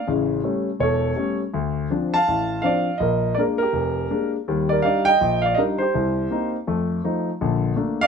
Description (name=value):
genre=solo jazz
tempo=164 BPM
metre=4/4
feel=swing 63% on 8ths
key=Bb major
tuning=A4 = 440 Hz
part: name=warm grand piano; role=solo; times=0.0-8.1 s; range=E1 to A5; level=-19 LUFS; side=equal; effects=none
room=light reverb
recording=minimal, uncompressed stereo recording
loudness=-19 LUFS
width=side -6 dB against mid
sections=0.0-8.1 A section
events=none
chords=0.1 A7; 1.5 Dm7; 3.0 Bb7; 4.5 Ebmaj7; 5.9 Cm7; 6.7 F7; 7.4 Bbmaj7